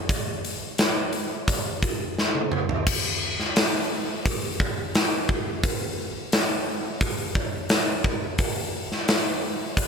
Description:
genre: rock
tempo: 87 BPM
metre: 4/4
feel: straight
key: none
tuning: none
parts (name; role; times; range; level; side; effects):
- big rock drum kit; drums; 0.1-9.9 s; crash cymbal, hi-hat, kick drum, snare drum, toms; -23 LUFS; equal; none
room: little or no reverb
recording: none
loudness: -23 LUFS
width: side -6 dB against mid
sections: 0.0-2.9 A section; 2.9-9.9 A section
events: drum fill 2.2-2.9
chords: none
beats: | 0.09 0.78 1.47 2.17 | 2.86 3.55 4.24 4.93 | 5.62 6.32 7.01 7.70 | 8.39 9.08 9.77

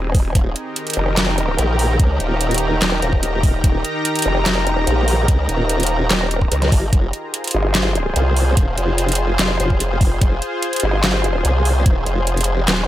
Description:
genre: heavy wobble dubstep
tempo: 146 BPM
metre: 4/4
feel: half-time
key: F minor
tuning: A4 = 439 Hz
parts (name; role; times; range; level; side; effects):
- lush unison pad; sustained chords; 0.0-12.9 s; Eb3 to Bb5; -22 LUFS; equal; chorus, sidechain pumping
- vowel-sweep wobble bass; bass; 0.0-12.9 s; Eb1 to Db2; -19 LUFS; equal; chorus, overdrive
- dubstep drum kit; drums; 0.1-12.8 s; handclaps, hi-hat, snare drum; -20 LUFS; right 1 dB; none
- electronic kick drum; drums; 0.1-11.9 s; none; -16 LUFS; equal; none
- formant-sweep wobble bass; bass; 0.4-12.7 s; Eb1 to Db2; -18 LUFS; equal; chorus, overdrive
room: digital ambience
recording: none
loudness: -15 LUFS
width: side -13 dB against mid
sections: 0.0-12.9 A section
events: none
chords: 0.4 Eb; 6.9 Fm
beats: | 0.35 0.76 1.17 1.58 | 2.00 2.41 2.82 3.23 | 3.64 4.05 4.46 4.87 | 5.28 5.70 6.11 6.52 | 6.93 7.34 7.75 8.16 | 8.57 8.98 9.39 9.80 | 10.21 10.63 11.04 11.45 | 11.86 12.27 12.68

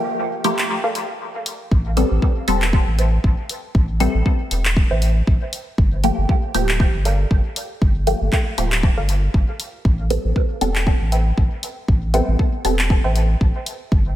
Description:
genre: dub techno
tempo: 118 BPM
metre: 4/4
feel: swing 56% on 16ths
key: unclear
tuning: A4 = 439 Hz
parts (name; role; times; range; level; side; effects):
- filtered dub chord stab; stabs; 0.0-13.9 s; F3 to A4; -23 LUFS; equal; phaser, sidechain pumping, dub echo
- deep house drum kit; drums; 0.4-13.8 s; handclaps, hi-hat; -25 LUFS; equal; studio reverb, dub echo
- warbly dusty pluck; riff; 0.8-13.1 s; A4 to G5; -29 LUFS; right 1 dB; chorus, sidechain pumping, dub echo
- warm sub bass; bass; 1.7-14.2 s; D1 to A1; -19 LUFS; equal; sidechain pumping
- electronic kick drum; drums; 1.7-14.0 s; none; -17 LUFS; equal; studio reverb
room: light reverb, digital ambience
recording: none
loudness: -17 LUFS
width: side -13 dB against mid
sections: 0.0-14.2 A section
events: break 0.0-1.7; filter sweep on synth stab 0.0-14.2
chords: 0.0 Gm9; 1.7 Am9; 5.8 Gm9; 9.8 Am9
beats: 0.19 0.70 1.21 | 1.72 2.22 2.73 3.24 | 3.75 4.26 4.77 5.27 | 5.78 6.29 6.80 7.31 | 7.82 8.32 8.83 9.34 | 9.85 10.36 10.87 11.38 | 11.88 12.39 12.90 13.41 | 13.92

